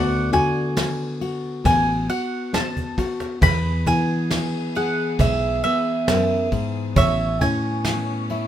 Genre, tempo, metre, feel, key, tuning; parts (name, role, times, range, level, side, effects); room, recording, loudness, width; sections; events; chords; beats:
acoustic folk duo or small band; 68 BPM; 4/4; straight; E mixolydian; A4 = 441 Hz
mandolin; melody; 0.0-8.5 s; E5 to B5; -24 LUFS; right 2 dB
lap resonator guitar; second line; 0.0-8.5 s; B4 to D5; -31 LUFS; right 3 dB
nylon-string guitar; accompaniment; 0.0-8.5 s; E2 to G#4; -25 LUFS; left 3 dB
fingered electric bass; bass; 0.0-8.5 s; A1 to E3; -25 LUFS; equal
cajon; percussion; 0.1-8.1 s; -24 LUFS; right 1 dB
soft brush drum kit; drums; 0.3-8.5 s; kick drum, ride cymbal, snare drum; -28 LUFS; equal
warm chamber string section; sustained chords; 3.4-8.5 s; E3 to G#4; -32 LUFS; left 3 dB
light reverb; minimal, uncompressed stereo recording; -19 LUFS; side -11 dB against mid
0.0-8.5 A section
drum fill 2.8-3.4
0.0 D6; 3.4 E; 7.0 Aadd9
0.77 1.66 2.54 | 3.42 4.31 5.19 6.08 | 6.96 7.85